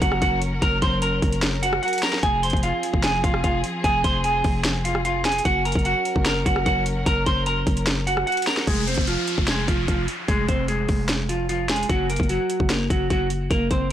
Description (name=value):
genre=hip hop, trap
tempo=149 BPM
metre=4/4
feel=half-time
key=F phrygian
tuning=A4 = 440 Hz
part: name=semi-hollow electric guitar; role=melody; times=0.0-13.9 s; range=F3 to C6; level=-23 LUFS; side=right 1 dB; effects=low-pass filter, digital delay
part: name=dark studio string section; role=sustained chords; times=0.0-8.6 s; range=F3 to Bb4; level=-30 LUFS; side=left 2 dB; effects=none
part: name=growling 808-style bass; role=bass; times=0.0-13.9 s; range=F1 to Gb1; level=-26 LUFS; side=equal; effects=none
part: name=trap drum kit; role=drums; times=0.0-13.8 s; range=hi-hat, kick drum, rim click, snare drum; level=-24 LUFS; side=equal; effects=none
part: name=downlifter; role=sound effects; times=8.7-11.9 s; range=none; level=-30 LUFS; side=left 1 dB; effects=none
room=digital ambience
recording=blown-out, overdriven recording, overdrive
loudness=-20 LUFS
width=side -11 dB against mid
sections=0.0-8.7 A section; 8.7-13.9 B section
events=none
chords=0.0 Gb; 2.2 Fm; 5.5 Gb; 8.7 Fm; 11.9 Gb